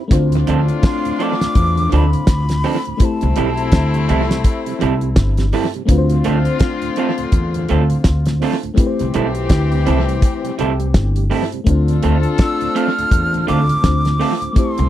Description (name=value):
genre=lovers rock reggae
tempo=83 BPM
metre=4/4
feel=swing 59% on 16ths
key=D minor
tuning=A4 = 440 Hz
part: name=mellow FM electric piano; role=accompaniment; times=0.0-14.9 s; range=A3 to E5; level=-24 LUFS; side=left 4 dB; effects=chorus
part: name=mellow tonewheel organ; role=accompaniment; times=0.0-14.9 s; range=D2 to F4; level=-26 LUFS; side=right 12 dB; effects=chorus vibrato, slow rotary speaker
part: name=warm horn section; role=second line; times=0.1-14.9 s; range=A2 to A4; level=-25 LUFS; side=left 5 dB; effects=none
part: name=upright bass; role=bass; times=0.1-14.9 s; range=G1 to E2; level=-17 LUFS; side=equal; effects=none
part: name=damped 70s drum kit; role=drums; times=0.1-14.9 s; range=hi-hat, kick drum, snare drum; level=-16 LUFS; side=equal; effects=tape echo
part: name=electric guitar through a small old amp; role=stabs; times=0.5-14.3 s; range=F3 to A4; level=-20 LUFS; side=right 6 dB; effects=none
part: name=breathy jazz flute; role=melody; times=0.9-4.5, 12.4-14.9 s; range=A5 to F6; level=-22 LUFS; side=equal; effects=tape echo
room=little or no reverb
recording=dry, close 1970s-style studio recording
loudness=-14 LUFS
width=side -12 dB against mid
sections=0.1-14.9 A section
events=none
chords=0.1 Dm7; 3.0 C6; 5.9 Dm7; 8.8 C6; 11.7 Dm7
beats=| 0.10 0.83 1.55 2.27 | 3.00 3.72 4.44 5.16 | 5.89 6.61 7.33 8.05 | 8.78 9.50 10.22 10.95 | 11.67 12.39 13.12 13.84 | 14.56